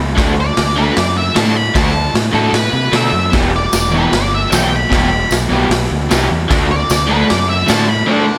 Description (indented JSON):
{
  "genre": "garage rock duo or trio",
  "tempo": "152 BPM",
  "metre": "4/4",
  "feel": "straight",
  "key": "unclear",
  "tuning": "A4 = 436 Hz",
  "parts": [
    { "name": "growling fingered electric bass", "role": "bass", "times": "0.0-8.0 s", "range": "E1 to C3", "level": "-21 LUFS", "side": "equal", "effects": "overdrive" },
    { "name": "crunchy overdriven guitar", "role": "riff", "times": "0.2-8.2 s", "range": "E2 to G4", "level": "-19 LUFS", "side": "equal", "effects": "spring reverb" },
    { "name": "raw garage drum kit", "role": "drums", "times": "0.2-7.8 s", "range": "hi-hat, kick drum, snare drum", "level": "-19 LUFS", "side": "equal", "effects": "none" },
    { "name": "octave-fuzz lead guitar", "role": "melody", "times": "0.4-8.4 s", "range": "D4 to B5", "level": "-20 LUFS", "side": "equal", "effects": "distortion" },
    { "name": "tambourine", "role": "percussion", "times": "3.7-7.8 s", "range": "none", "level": "-27 LUFS", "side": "equal", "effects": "none" }
  ],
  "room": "light reverb",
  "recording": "none",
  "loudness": "-14 LUFS",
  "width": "mono",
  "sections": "0.0-8.4 A section",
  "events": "none",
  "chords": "0.2 D; 3.3 Em; 6.5 D",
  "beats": "| 0.17 0.57 0.96 1.36 | 1.76 2.15 2.55 2.94 | 3.34 3.73 4.13 4.52 | 4.92 5.32 5.71 6.11 | 6.50 6.90 7.29 7.69 | 8.09"
}